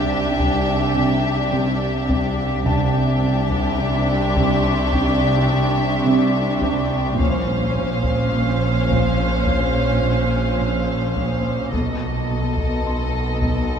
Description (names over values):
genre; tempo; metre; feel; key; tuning
cinematic, suspense film score; 53 BPM; 4/4; straight; unclear; A4 = 440 Hz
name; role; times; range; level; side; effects
rich studio violin section; melody; 0.0-13.8 s; D#5 to F5; -28 LUFS; left 3 dB; none
warm studio violin section; second line; 0.0-13.8 s; G4 to C5; -26 LUFS; left 2 dB; none
rich studio viola section; accompaniment; 0.0-13.8 s; B3 to D4; -25 LUFS; right 1 dB; none
warm studio cello section; riff; 0.0-13.8 s; Bb2 to C4; -26 LUFS; right 2 dB; none
dark studio cello section; bass; 0.0-13.8 s; Bb2 to C3; -25 LUFS; right 2 dB; none
dark studio double bass section; bass; 0.0-13.8 s; Bb1 to C2; -25 LUFS; right 1 dB; none
overtone-sweeping drone; drone; 0.0-13.8 s; Bb1 to C2; -28 LUFS; left 2 dB; chorus, built-in reverb
felt-muted upright piano; texture; 0.0-13.8 s; G5 to C6; -37 LUFS; left 3 dB; none
taiko ensemble; drums; 0.4-13.8 s; none; -28 LUFS; left 1 dB; none
room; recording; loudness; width
wet scoring stage reverb, RT60 1.7 s; dark, warm production; -17 LUFS; side -7 dB against mid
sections
0.0-13.8 A section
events
none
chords
0.0 Cadd9; 7.2 Bbmadd9; 11.7 B7